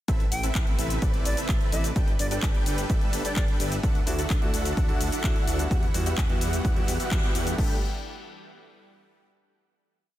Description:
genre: EDM, festival progressive house.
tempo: 128 BPM.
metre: 4/4.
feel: straight.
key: G major.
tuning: A4 = 439 Hz.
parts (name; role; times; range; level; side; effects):
supersaw pad; sustained chords; 0.1-7.8 s; C3 to F#5; -39 LUFS; equal; none.
dense compressed supersaw; riff; 0.1-7.8 s; B3 to G5; -32 LUFS; equal; sidechain pumping, digital delay.
wide detuned saw bass; bass; 0.1-7.8 s; G1 to E2; -30 LUFS; equal; chorus, sidechain pumping.
electronic kick drum; drums; 0.1-7.7 s; none; -25 LUFS; equal; none.
house drum kit; drums; 0.1-7.7 s; crash cymbal, handclaps, hi-hat, shaker; -34 LUFS; left 2 dB; none.
bright reedy wooden flute; melody; 0.3-3.4 s; D5 to G5; -36 LUFS; equal; digital delay.
clear grand piano; accompaniment; 4.1-7.8 s; G3 to G4; -35 LUFS; right 1 dB; sidechain pumping, digital delay.
room: little or no reverb.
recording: dense, heavily limited modern master.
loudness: -23 LUFS.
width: side -14 dB against mid.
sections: 0.1-7.6 drop; 7.6-9.5 final chord.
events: drop 0.1-7.6; band accent 7.1.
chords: 0.1 Amadd9; 2.0 Gadd9; 3.8 Dadd9; 5.7 Emadd9; 7.6 Gadd9.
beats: | 0.08 0.55 1.02 1.49 | 1.96 2.43 2.90 3.37 | 3.83 4.30 4.77 5.24 | 5.71 6.18 6.65 7.12 | 7.58.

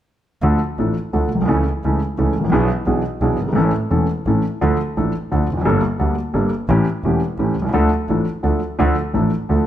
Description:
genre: tango.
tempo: 172 BPM.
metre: 3/4.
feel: rubato.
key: D harmonic minor.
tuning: A4 = 440 Hz.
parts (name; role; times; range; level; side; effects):
warm concert grand piano; accompaniment; 0.4-9.6 s; E1 to A4; -18 LUFS; equal; none.
clear double bass; bass; 0.4-9.7 s; E1 to D2; -21 LUFS; right 1 dB; none.
room: moderate recital hall reverb, RT60 1.4 s.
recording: close, detailed microphones.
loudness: -16 LUFS.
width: side -11 dB against mid.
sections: 0.4-8.8 A section.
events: none.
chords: 0.4 Dm; 1.5 A/C#; 2.5 E7/B; 3.6 A; 4.6 Dm; 5.7 Gmadd9; 6.7 A7; 7.7 Dm.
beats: | 0.42 0.78 1.13 | 1.48 1.83 2.18 | 2.52 2.87 3.21 | 3.56 3.91 4.26 | 4.62 4.97 5.31 | 5.66 6.00 6.35 | 6.69 7.04 7.39 | 7.74 8.09 8.44 | 8.80 9.15 9.51.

